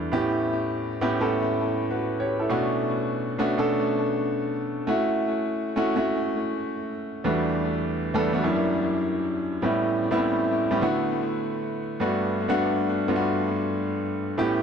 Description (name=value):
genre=R&B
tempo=101 BPM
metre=4/4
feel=swing 65% on 16ths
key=unclear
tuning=A4 = 440 Hz
part: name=clear concert grand piano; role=solo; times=0.0-14.6 s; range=E2 to C#5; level=-23 LUFS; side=equal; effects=ping-pong delay
room=moderate lush hall reverb, RT60 2.3 s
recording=none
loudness=-23 LUFS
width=side -7 dB against mid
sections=0.0-9.6 A section; 9.6-14.6 B section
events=none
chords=0.1 A7; 2.5 Bm7; 4.9 F#m7; 7.2 Em11; 8.4 F#7b9b13; 9.6 A7; 10.8 D69; 12.0 Gmaj9